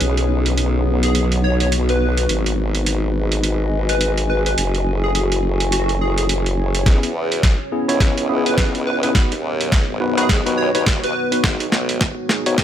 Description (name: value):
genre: glitch hop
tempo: 105 BPM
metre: 4/4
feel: swing 59% on 16ths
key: C# minor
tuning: A4 = 440 Hz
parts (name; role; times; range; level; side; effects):
- dark analog pad; sustained chords; 0.0-12.6 s; F#3 to B4; -27 LUFS; equal; chorus, sidechain pumping
- formant-sweep wobble bass; bass; 0.0-12.6 s; F#1 to E2; -21 LUFS; equal; chorus, tube saturation, high-pass filter
- boom bap sampler-style drum kit; drums; 0.0-12.6 s; hi-hat, snare drum; -22 LUFS; right 1 dB; none
- warbly tape-like pad; texture; 0.0-12.6 s; B3 to G#5; -26 LUFS; left 1 dB; chorus, built-in reverb, sidechain pumping
- plucky unison lead; melody; 1.0-11.5 s; F#4 to C#5; -24 LUFS; left 1 dB; ping-pong delay
- bright tine electric piano; stabs; 6.9-12.6 s; B3 to C#5; -22 LUFS; left 1 dB; medium stereo tremolo, sidechain pumping, low-pass filter, ping-pong delay
- electronic kick drum; drums; 6.9-12.6 s; none; -17 LUFS; equal; none
room: little or no reverb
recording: high-pass filter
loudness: -16 LUFS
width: side -10 dB against mid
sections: 0.0-6.9 A section; 6.9-12.6 B section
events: build-up 6.9-12.6; drum fill 6.9-12.6; filter sweep 6.9-12.6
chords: 0.0 B; 2.3 G#m7; 4.6 F#m9; 6.9 C#m7; 9.2 G#m7